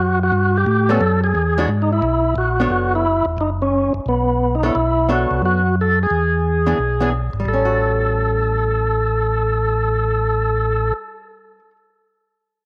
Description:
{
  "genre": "soul jazz organ trio",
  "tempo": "177 BPM",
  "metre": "4/4",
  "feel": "swing 65% on 8ths",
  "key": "A mixolydian",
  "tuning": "A4 = 438 Hz",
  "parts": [
    { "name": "percussive tonewheel organ", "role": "melody", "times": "0.0-10.9 s", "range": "B3 to A4", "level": "-21 LUFS", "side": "equal", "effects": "slow rotary speaker, overdrive" },
    { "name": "mellow tonewheel organ", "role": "bass", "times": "0.0-10.9 s", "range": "E1 to A2", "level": "-22 LUFS", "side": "equal", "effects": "slow rotary speaker" },
    { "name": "archtop guitar, miked and amplified", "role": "accompaniment", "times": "0.9-11.8 s", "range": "E3 to C#5", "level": "-25 LUFS", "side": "equal", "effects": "none" }
  ],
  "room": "moderate spring reverb, RT60 2.0 s, digital ambience",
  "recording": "none",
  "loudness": "-18 LUFS",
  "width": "mono",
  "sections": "0.0-2.0 A section; 2.0-7.5 B section; 7.5-10.2 C section",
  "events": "none",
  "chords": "0.0 N.C.; 0.7 A9; 1.3 E9; 2.0 Bm9; 3.4 F#sus4; 4.7 Bm9; 6.1 E7; 7.5 A6"
}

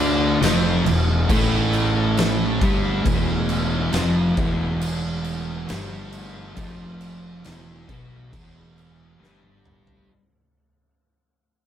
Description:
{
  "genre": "stoner and doom metal",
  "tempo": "68 BPM",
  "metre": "4/4",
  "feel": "straight",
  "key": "E minor",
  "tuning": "A4 = 439 Hz",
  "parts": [
    { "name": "bowed-like drone", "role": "sustained chords", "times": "0.1-10.1 s", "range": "A3 to F#5", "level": "-34 LUFS", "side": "left 3 dB", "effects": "none" },
    { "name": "thick fuzz guitar", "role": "riff", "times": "0.0-10.1 s", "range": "E2 to D4", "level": "-26 LUFS", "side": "left 5 dB", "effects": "distortion" },
    { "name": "thick fuzz guitar", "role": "riff", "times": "0.0-10.1 s", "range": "E2 to D4", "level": "-25 LUFS", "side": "right 4 dB", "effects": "distortion" },
    { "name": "fuzz fingered electric bass", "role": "bass", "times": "0.0-10.0 s", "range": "E1 to D2", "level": "-26 LUFS", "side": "equal", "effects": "overdrive" },
    { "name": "oversized low-tuned drum kit", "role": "drums", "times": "0.4-10.1 s", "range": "crash cymbal, kick drum, snare drum, toms", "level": "-24 LUFS", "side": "equal", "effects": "none" }
  ],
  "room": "moderate studio reverb, RT60 0.9 s",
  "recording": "band playing live in one room",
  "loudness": "-18 LUFS",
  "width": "side -10 dB against mid",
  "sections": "0.0-10.1 A section",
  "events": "fade-out 0.0-10.1; drum fill 9.2-10.1",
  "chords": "0.0 Em"
}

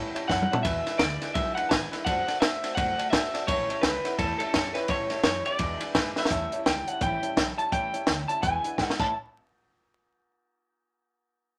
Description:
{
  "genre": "rockabilly",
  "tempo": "170 BPM",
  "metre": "4/4",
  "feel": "swing 61% on 8ths",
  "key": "A mixolydian",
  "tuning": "A4 = 441 Hz",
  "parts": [
    { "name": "electric guitar through a small old amp", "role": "melody", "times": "0.0-9.1 s", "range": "A4 to A5", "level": "-31 LUFS", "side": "equal", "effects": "none" },
    { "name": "picked steel-string acoustic guitar", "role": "accompaniment", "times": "0.0-9.1 s", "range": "E2 to F#4", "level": "-40 LUFS", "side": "equal", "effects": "none" },
    { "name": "warm upright piano", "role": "accompaniment", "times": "0.0-9.1 s", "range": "B4 to B5", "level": "-39 LUFS", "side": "equal", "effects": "none" },
    { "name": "upright bass", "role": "bass", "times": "0.0-9.1 s", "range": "E1 to A2", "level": "-41 LUFS", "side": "equal", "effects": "none" },
    { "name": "compact cocktail drum kit", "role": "drums", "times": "0.2-9.1 s", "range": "crash cymbal, hi-hat, kick drum, ride cymbal, snare drum, toms", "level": "-30 LUFS", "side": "equal", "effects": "none" }
  ],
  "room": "moderate studio reverb, RT60 0.6 s",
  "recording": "vinyl crackle",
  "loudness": "-27 LUFS",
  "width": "mono",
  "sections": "0.0-6.3 A section; 6.3-9.1 B section; 9.1-10.6 C section",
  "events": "drum fill 0.3-0.6, 6.1, 8.8-9.1",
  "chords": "0.0 A7; 0.6 E7; 2.1 D7; 3.5 A7; 5.6 E7; 6.3 A7; 8.4 E7; 9.0 A7; 9.1 N.C."
}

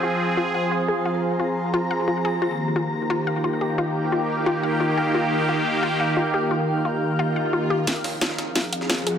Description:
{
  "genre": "dark technical drum and bass",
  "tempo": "176 BPM",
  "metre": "4/4",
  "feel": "straight",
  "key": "F minor",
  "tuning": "A4 = 440 Hz",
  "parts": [
    { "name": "sweeping resonant pad", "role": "sustained chords", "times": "0.0-9.2 s", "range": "Eb3 to Ab4", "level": "-24 LUFS", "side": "right 1 dB", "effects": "chorus" },
    { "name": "wide unison pluck", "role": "arpeggios", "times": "0.0-9.2 s", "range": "F4 to F5", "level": "-27 LUFS", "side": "left 2 dB", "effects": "dub echo" },
    { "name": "granular cloud pad", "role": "texture", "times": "0.0-9.2 s", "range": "Eb4 to Bb5", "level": "-26 LUFS", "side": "equal", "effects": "built-in reverb" },
    { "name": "swell and riser", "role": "sound effects", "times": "7.3-9.2 s", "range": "none", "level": "-33 LUFS", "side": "right 2 dB", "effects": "none" },
    { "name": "drum and bass drum kit", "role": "drums", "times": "7.9-9.1 s", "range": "hi-hat, snare drum", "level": "-25 LUFS", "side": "equal", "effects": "high-pass filter on hats, small room ambience, high-pass filter on snare" },
    { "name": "jungle sampler-style drum kit", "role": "drums", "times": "7.9-9.1 s", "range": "hi-hat, snare drum", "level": "-30 LUFS", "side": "right 1 dB", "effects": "high-pass filter on hats, small room ambience, high-pass filter on snare, high-pass filter on room" }
  ],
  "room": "moderate lush hall reverb, RT60 2.2 s",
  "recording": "none",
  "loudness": "-20 LUFS",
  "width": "side -8 dB against mid",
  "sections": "0.0-7.9 A section; 7.9-9.2 B section",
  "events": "swell 7.3-7.9; build-up 7.9-9.2; drum fill 7.9-9.2; filter sweep on synth arpeggio sound 7.9-9.2",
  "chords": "0.0 Fm; 2.4 Eb; 7.9 Fm"
}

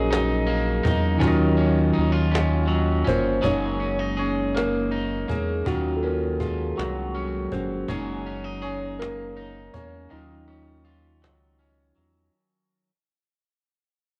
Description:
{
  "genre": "slow six-eight R&B",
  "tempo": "54 BPM (dotted quarters)",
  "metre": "6/8",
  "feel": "straight",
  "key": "Eb minor",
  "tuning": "A4 = 444 Hz",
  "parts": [
    { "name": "electric guitar at the edge of break-up", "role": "second line", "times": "0.0-12.9 s", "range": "Eb3 to Ab4", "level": "-32 LUFS", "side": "equal", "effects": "cassette tape" },
    { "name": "barky tine electric piano", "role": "accompaniment", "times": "0.0-12.3 s", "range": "Eb3 to Eb5", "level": "-27 LUFS", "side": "equal", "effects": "phaser, cassette tape" },
    { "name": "rubbery square bass", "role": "bass", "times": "0.0-12.3 s", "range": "Gb1 to Fb2", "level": "-30 LUFS", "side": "equal", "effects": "tube saturation" },
    { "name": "cajon", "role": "drums", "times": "0.1-12.1 s", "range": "none", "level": "-31 LUFS", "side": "equal", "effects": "none" }
  ],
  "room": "digital ambience",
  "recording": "home recording on cassette",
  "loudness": "-24 LUFS",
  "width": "mono",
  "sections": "0.0-3.4 A section; 3.4-12.3 B section",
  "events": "fade-out 3.4-12.3; tine electric piano solo 3.4-12.3; break 10.1-12.3",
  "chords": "0.0 Gb69; 1.2 Ebm9; 3.4 Gb69; 5.7 Ebm9; 7.9 Gb69; 10.1 Ebm9"
}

